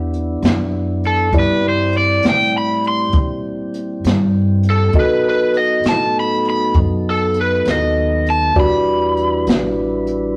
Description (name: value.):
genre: slow blues.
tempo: 66 BPM (dotted quarters).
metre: 12/8.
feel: straight.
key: E minor.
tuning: A4 = 437 Hz.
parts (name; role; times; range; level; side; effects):
mellow tine electric piano; accompaniment; 0.0-10.4 s; E4 to F#5; -24 LUFS; equal; none.
mellow tonewheel organ; sustained chords; 0.0-10.4 s; C#3 to B4; -26 LUFS; equal; slow rotary speaker.
upright bass; bass; 0.0-10.4 s; A1 to B2; -23 LUFS; equal; none.
jazz brush drum kit; drums; 0.1-10.2 s; hi-hat, kick drum, snare drum; -20 LUFS; equal; none.
crunchy overdriven guitar; melody; 1.1-10.4 s; A4 to C6; -20 LUFS; equal; none.
room: moderate stone room reverb, RT60 1.1 s.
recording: rough rehearsal-room recording.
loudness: -16 LUFS.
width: mono.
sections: 0.0-10.4 A section.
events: none.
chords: 0.0 Em7; 1.3 C7; 4.9 B7; 8.6 Em7.